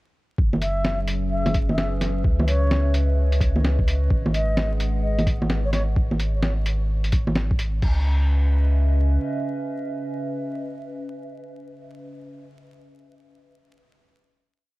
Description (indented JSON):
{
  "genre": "future garage",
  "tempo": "129 BPM",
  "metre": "4/4",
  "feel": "swing 64% on 16ths",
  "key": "C# minor",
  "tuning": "A4 = 445 Hz",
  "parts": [
    { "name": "warbly tape-like pad", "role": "sustained chords", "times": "0.7-12.1 s", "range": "C#3 to F#5", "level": "-31 LUFS", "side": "equal", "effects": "chorus, built-in reverb, sidechain pumping" },
    { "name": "warm sub bass", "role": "bass", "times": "0.4-9.2 s", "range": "F#1 to C#2", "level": "-21 LUFS", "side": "equal", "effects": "tube saturation, sidechain pumping" },
    { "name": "electronic kick drum", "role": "drums", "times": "0.4-7.9 s", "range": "none", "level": "-21 LUFS", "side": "equal", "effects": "vintage 12-bit sampler grit" },
    { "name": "lo-fi sampler-style drum kit", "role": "drums", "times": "0.5-7.9 s", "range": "bongos, crash cymbal, hi-hat, snare drum", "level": "-26 LUFS", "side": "equal", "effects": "vintage 12-bit sampler grit" },
    { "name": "mellow baroque flute", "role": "melody", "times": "0.6-5.8 s", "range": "C#5 to E5", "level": "-30 LUFS", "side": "left 1 dB", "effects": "vintage 12-bit sampler grit, analog delay" }
  ],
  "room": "little or no reverb",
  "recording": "vinyl crackle",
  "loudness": "-20 LUFS",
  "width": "side -20 dB against mid",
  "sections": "0.4-7.8 groove; 7.8-11.5 final chord",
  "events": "none",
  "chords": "0.4 F#9sus4; 2.2 C#m9; 4.1 G#m7; 6.0 N.C.; 7.8 C#m9"
}